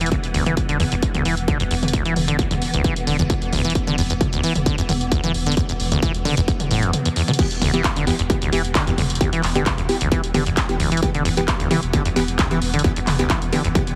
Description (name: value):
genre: driving peak-time techno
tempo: 132 BPM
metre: 4/4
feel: straight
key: E minor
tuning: A4 = 440 Hz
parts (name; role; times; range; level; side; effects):
- acid bass, saw; riff; 0.0-13.8 s; D2 to E3; -25 LUFS; equal; sidechain pumping, tape echo
- saturated sub bass; bass; 0.0-13.8 s; E1; -30 LUFS; equal; tube saturation, sidechain pumping, low-pass filter
- swarming drone; drone; 0.0-14.0 s; E3 to B3; -31 LUFS; equal; built-in reverb, sidechain pumping
- punchy analog drum machine; drums; 0.0-14.0 s; crash cymbal, handclaps, hi-hat, toms; -27 LUFS; equal; sidechain pumping on hats, sidechain pumping on toms, sidechain pumping on cymbals
- electronic kick drum; drums; 0.1-13.8 s; none; -25 LUFS; equal; distortion
- wavetable chord stab; stabs; 7.4-13.8 s; E3 to G4; -27 LUFS; equal; sidechain pumping, tape echo
room: light reverb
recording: heavily compressed radio sound, multiband compression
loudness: -20 LUFS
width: mono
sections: 0.0-7.4 A section; 7.4-14.0 B section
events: drop 7.4-14.0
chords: 0.0 E5; 7.4 Em